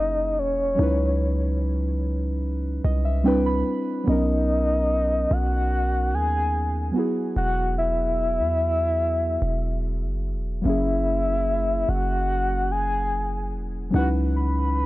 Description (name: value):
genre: contemporary R&B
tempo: 73 BPM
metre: 4/4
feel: straight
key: unclear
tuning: A4 = 440 Hz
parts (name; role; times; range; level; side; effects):
- soft octave-layered synth lead; melody; 0.0-14.9 s; C#5 to B5; -25 LUFS; left 1 dB; chorus, tremolo
- muted felt-like synth keys; accompaniment; 0.0-14.9 s; F#3 to B5; -27 LUFS; equal; chorus
- warm 808-style bass; bass; 0.0-14.9 s; E1 to E2; -25 LUFS; equal; none
room: little or no reverb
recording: dry, gritty hardware recording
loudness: -21 LUFS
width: side -17 dB against mid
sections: 0.0-14.9 A section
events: synth keys fill 2.4-4.1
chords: 0.0 F#9; 0.8 C#m11; 3.3 Cmaj9; 4.1 Bmaj9; 7.0 Eadd9; 10.6 F#9; 13.9 C#m11